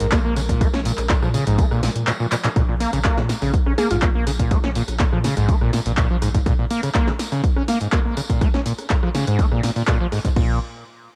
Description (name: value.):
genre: acid house.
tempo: 123 BPM.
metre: 4/4.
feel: straight.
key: Bb minor.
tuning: A4 = 439 Hz.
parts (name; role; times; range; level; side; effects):
warm analog pad; sustained chords; 0.0-2.5 s; F3 to Bb4; -35 LUFS; equal; none.
overdriven acid bass; riff; 0.0-10.6 s; Ab2 to Db4; -25 LUFS; equal; distortion, tube saturation, lush chorus, sidechain pumping, cassette tape, analog delay.
round analog bass; bass; 0.0-6.4, 10.4-10.6 s; Bb1 to Bb2; -28 LUFS; equal; tube saturation, sidechain pumping.
punchy analog drum machine; drums; 0.0-10.5 s; crash cymbal, handclaps, hi-hat, rim click, snare drum; -29 LUFS; equal; overdrive, cassette tape.
tambourine; percussion; 0.0-10.3 s; none; -39 LUFS; equal; none.
electronic kick drum; drums; 0.1-10.5 s; none; -22 LUFS; equal; overdrive, cassette tape.
mallet-like synth pluck; melody; 3.8-4.6 s; F4 to Ab4; -29 LUFS; equal; chorus, cassette tape, tape echo.
room: light reverb.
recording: home recording on cassette.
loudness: -20 LUFS.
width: mono.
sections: 0.0-2.6 A section; 2.6-10.4 B section.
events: drop 0.0-2.6; drum fill 2.3.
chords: 0.0 Bb5; 10.4 N.C..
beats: 0.12 | 0.61 1.10 1.58 2.07 | 2.56 3.05 3.54 4.02 | 4.51 5.00 5.49 5.97 | 6.46 6.95 7.44 7.93 | 8.41 8.90 9.39 9.88 | 10.37.